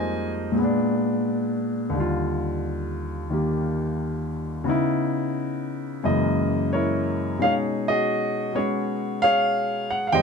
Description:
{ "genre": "solo jazz", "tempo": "88 BPM", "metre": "4/4", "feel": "swing 67% on 8ths", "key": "unclear", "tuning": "A4 = 440 Hz", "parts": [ { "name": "warm baby grand piano", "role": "solo", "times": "0.0-10.2 s", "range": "Eb2 to Ab5", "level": "-22 LUFS", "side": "left 1 dB", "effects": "none" } ], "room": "light reverb", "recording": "close, detailed microphones", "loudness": "-22 LUFS", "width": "side -5 dB against mid", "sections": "0.0-10.2 A section", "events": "none", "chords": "0.0 Fm11; 0.6 Bb7b9; 1.9 Ebmaj9; 4.7 Dbm9; 6.0 Gb13; 7.4 B69" }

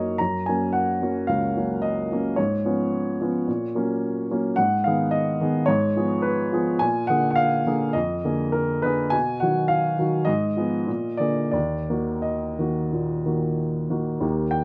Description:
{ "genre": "classical, romantic character piece for solo piano", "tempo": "86-112 BPM", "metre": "4/4", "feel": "rubato", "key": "Eb minor", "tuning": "A4 = 440 Hz", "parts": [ { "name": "warm upright piano", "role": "solo", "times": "0.0-14.6 s", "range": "Db2 to Bb5", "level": "-24 LUFS", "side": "equal", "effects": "none" } ], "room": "light reverb", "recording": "close, detailed microphones", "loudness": "-24 LUFS", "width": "mono", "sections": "0.0-14.2 A section", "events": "none", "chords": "0.2 Gb; 2.4 Db7/Ab; 3.5 Gb/Bb; 4.6 Abm; 5.7 Fdim/Ab; 6.8 Bb7; 9.1 B; 10.3 Fm7b5/Ab; 10.9 Bb7; 11.5 Ebm" }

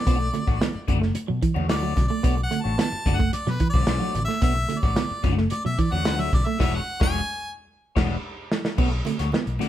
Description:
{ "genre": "funk", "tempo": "110 BPM", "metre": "4/4", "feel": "straight", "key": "B dorian", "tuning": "A4 = 440 Hz", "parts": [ { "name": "clear harmonica", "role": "melody", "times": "0.0-7.5 s", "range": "B4 to A5", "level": "-29 LUFS", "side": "equal", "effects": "none" }, { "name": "electric guitar at the edge of break-up", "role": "riff", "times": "0.0-9.6 s", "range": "E3 to B3", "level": "-28 LUFS", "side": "right 6 dB", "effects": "none" }, { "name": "electric guitar at the edge of break-up", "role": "accompaniment", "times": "0.1-9.7 s", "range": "G#3 to D5", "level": "-30 LUFS", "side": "left 6 dB", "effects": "phaser" }, { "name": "vintage muted fingered electric bass", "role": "bass", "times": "0.1-9.6 s", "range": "E1 to B2", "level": "-27 LUFS", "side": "left 1 dB", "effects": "none" }, { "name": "warm soul drum kit", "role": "drums", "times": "0.1-9.7 s", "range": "crash cymbal, hi-hat, kick drum, snare drum", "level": "-24 LUFS", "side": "equal", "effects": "none" }, { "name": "congas", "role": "percussion", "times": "0.1-9.7 s", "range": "none", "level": "-34 LUFS", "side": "right 5 dB", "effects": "none" } ], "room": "moderate stone room reverb, RT60 1.2 s", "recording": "band playing live in one room", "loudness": "-21 LUFS", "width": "side -12 dB against mid", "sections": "0.0-8.8 A section", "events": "harmonica solo 0.0-8.8; band accent 6.6-8.8; drum fill 7.7-8.8", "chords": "0.1 Bm9; 6.6 E13; 8.8 Bm9" }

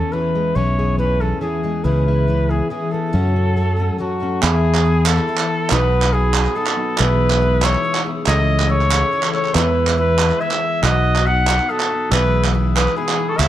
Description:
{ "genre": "indie folk with a building arrangement", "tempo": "140 BPM", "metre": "3/4", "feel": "straight", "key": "E major", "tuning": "A4 = 441 Hz", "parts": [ { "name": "mellow trumpet", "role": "melody", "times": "0.0-13.5 s", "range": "F#4 to F#5", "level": "-20 LUFS", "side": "equal", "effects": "slapback echo" }, { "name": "fingerpicked plugged-in steel-string acoustic guitar", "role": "accompaniment", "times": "0.0-4.4 s", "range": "E2 to G#4", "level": "-25 LUFS", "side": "left 1 dB", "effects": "none" }, { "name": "picked twelve-string acoustic guitar", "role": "accompaniment", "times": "0.0-13.5 s", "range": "F#2 to G#4", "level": "-25 LUFS", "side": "left 6 dB", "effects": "none" }, { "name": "fingered electric bass", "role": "bass", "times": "0.6-13.5 s", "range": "B1 to F#2", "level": "-17 LUFS", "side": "equal", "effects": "none" }, { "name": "glockenspiel with rubber mallets", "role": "second line", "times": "4.0-13.5 s", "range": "A5 to B6", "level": "-27 LUFS", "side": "left 5 dB", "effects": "none" }, { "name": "dark baby grand piano", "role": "accompaniment", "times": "4.4-13.5 s", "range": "B1 to E5", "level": "-29 LUFS", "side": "right 6 dB", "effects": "none" }, { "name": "group handclap", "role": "percussion", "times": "4.4-13.5 s", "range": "none", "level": "-22 LUFS", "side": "right 9 dB", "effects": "none" } ], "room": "light reverb", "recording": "dark, warm production", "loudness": "-15 LUFS", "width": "side -12 dB against mid", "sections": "0.0-4.4 A section; 4.4-13.5 B section", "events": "none", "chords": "0.0 E6; 1.8 C#m7; 3.1 F#m; 4.4 E; 5.7 B; 7.0 E/B; 8.3 Amaj7/C#; 9.6 E; 10.8 B; 12.1 E/B" }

